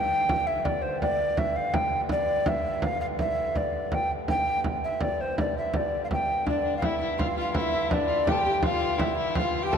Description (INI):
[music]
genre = medieval dance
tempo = 165 BPM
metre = 3/4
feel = straight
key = unclear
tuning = A4 = 440 Hz
[part]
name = breathy mellow tenor recorder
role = melody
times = 0.0-9.8 s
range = C5 to A5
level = -26 LUFS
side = equal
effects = none
[part]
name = hand-pumped harmonium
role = drone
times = 0.0-9.8 s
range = G2 to D3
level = -37 LUFS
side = left 1 dB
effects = none
[part]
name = frame drum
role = percussion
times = 0.3-9.8 s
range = none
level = -30 LUFS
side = right 1 dB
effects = none
[part]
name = Celtic harp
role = second line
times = 6.5-9.8 s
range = D4 to A4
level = -34 LUFS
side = left 1 dB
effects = none
[part]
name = dark fiddle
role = second line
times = 6.5-9.8 s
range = D4 to A4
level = -31 LUFS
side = left 6 dB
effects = none
[sound]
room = wet cathedral reverb, RT60 5.7 s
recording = none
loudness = -24 LUFS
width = side -7 dB against mid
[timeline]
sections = 0.0-6.5 A section; 6.5-9.8 A section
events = none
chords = none